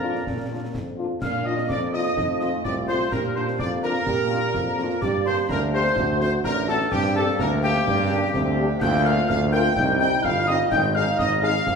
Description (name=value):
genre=military-style march for wind band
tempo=126 BPM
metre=2/4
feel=straight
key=Bb major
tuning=A4 = 440 Hz
part: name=warm trumpet section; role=melody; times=0.0-11.8 s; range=G4 to G5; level=-29 LUFS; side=equal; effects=none
part: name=mellow euphonium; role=second line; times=0.0-11.8 s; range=Bb2 to G4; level=-29 LUFS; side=right 3 dB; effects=none
part: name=mellow piccolo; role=second line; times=0.0-11.8 s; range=G5 to G6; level=-30 LUFS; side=left 3 dB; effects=none
part: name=warm woodwind section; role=second line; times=0.0-11.8 s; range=G4 to G5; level=-27 LUFS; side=left 1 dB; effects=none
part: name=warm French horn section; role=accompaniment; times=0.0-11.5 s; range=A3 to Bb4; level=-31 LUFS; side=left 3 dB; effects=none
part: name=warm trombone section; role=sustained chords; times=0.0-11.8 s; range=F3 to F4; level=-33 LUFS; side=equal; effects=none
part: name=clear tuba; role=bass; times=0.0-11.8 s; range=G1 to Bb2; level=-25 LUFS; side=right 1 dB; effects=none
part: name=concert snare drum, concert bass drum and clash cymbals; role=drums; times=0.2-11.8 s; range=none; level=-32 LUFS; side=equal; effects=none
room=wet large studio reverb, RT60 1.2 s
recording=heard from further back in the room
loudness=-20 LUFS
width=side -5 dB against mid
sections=0.0-1.2 A section; 1.2-11.8 A section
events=none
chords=0.0 Bb; 2.2 F7; 3.1 Bb; 5.0 Gm; 6.0 D; 6.9 Gm; 8.8 Bb/D; 9.8 Cm; 10.7 Fm9/Ab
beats=| 0.27 0.74 | 1.22 1.69 | 2.17 2.64 | 3.12 3.59 | 4.07 4.54 | 5.02 5.49 | 5.97 6.44 | 6.92 7.39 | 7.87 8.34 | 8.81 9.29 | 9.76 10.24 | 10.71 11.19 | 11.66